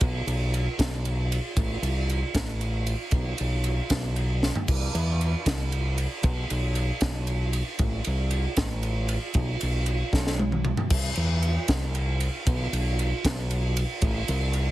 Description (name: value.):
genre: math rock and midwest emo.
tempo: 77 BPM (dotted quarters).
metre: 6/8.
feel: straight.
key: C major.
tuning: A4 = 441 Hz.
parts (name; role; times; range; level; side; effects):
growling fingered electric bass; bass; 0.0-14.7 s; A1 to E2; -26 LUFS; equal; overdrive.
crisp fusion drum kit; drums; 0.0-14.7 s; crash cymbal, kick drum, ride cymbal, snare drum, toms; -27 LUFS; right 1 dB; none.
room: little or no reverb.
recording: heavily compressed radio sound, multiband compression, lossy compression artefacts.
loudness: -24 LUFS.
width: side -15 dB against mid.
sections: 0.0-10.9 A section; 10.9-14.7 B section.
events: drum fill 4.4, 10.1-10.9.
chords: none.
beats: | 0.02 0.80 | 1.57 2.35 | 3.13 3.91 | 4.69 5.46 | 6.24 7.02 | 7.80 8.58 | 9.36 10.13 | 10.91 11.69 | 12.46 13.24 | 14.01.